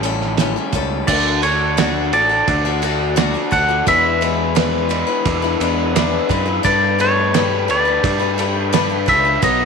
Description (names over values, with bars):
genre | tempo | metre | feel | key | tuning
folk rock and heartland rock | 86 BPM | 4/4 | straight | unclear | A4 = 440 Hz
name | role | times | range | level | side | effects
picked steel-string acoustic guitar | accompaniment | 0.0-9.7 s | A2 to C#5 | -21 LUFS | left 14 dB | none
raw garage guitar | riff | 0.0-9.7 s | E2 to B4 | -22 LUFS | right 2 dB | overdrive
picked electric bass | bass | 0.0-9.7 s | A1 to G2 | -24 LUFS | right 1 dB | none
cloth-damped thuddy drum kit | drums | 0.0-9.6 s | crash cymbal, hi-hat, kick drum, ride cymbal, snare drum | -22 LUFS | right 8 dB | none
twangy electric guitar | melody | 1.1-9.7 s | C#5 to F#5 | -18 LUFS | equal | spring reverb
tonewheel organ | sustained chords | 1.1-9.7 s | G#4 to C#6 | -30 LUFS | equal | slow rotary speaker, chorus vibrato
room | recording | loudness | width
light reverb, studio ambience | 1960s-style stereo with parts hard left and right | -14 LUFS | side -5 dB against mid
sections
0.0-1.1 A section; 1.1-9.7 B section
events
none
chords
0.0 A7; 1.1 D; 3.9 E7; 6.6 Gadd9